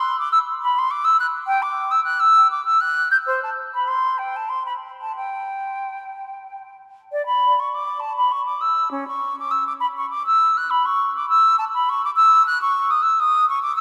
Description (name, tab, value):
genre	classical, baroque-style fantasia for unaccompanied flute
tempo	89-107 BPM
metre	3/4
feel	rubato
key	G major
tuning	A4 = 440 Hz
part	concert flute	solo	0.0-13.8 s	C#4 to G6	-20 LUFS	equal	none
room	wet cathedral reverb, RT60 5.1 s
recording	none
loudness	-20 LUFS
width	mono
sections	0.0-7.1 A section; 7.1-13.8 A section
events	none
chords	none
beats	0.36 0.93 | 1.50 2.08 2.65 | 3.26 3.88 4.49 | 5.14 5.81 6.46 | 7.12 7.71 8.30 | 8.93 9.53 10.12 | 10.71 11.30 11.89 | 12.47 13.05 13.62